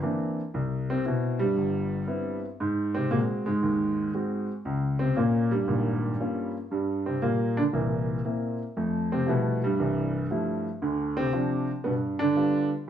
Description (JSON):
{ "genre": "jazz", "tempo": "117 BPM", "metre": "4/4", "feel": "swing 68% on 8ths", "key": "unclear", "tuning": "A4 = 440 Hz", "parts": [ { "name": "warm baby grand piano", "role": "solo", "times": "0.0-12.7 s", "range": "G1 to Gb4", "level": "-25 LUFS", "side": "equal", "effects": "none" } ], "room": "wet studio reverb, RT60 0.7 s", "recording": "heard from further back in the room", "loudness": "-25 LUFS", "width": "side -9 dB against mid", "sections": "0.5-12.9 A section", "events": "none", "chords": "0.0 C9; 0.5 Cmaj7; 2.6 Ab7; 4.6 Db6; 6.7 Gm7; 7.7 C7; 8.8 Fmaj9; 10.8 Dm7; 11.8 G7" }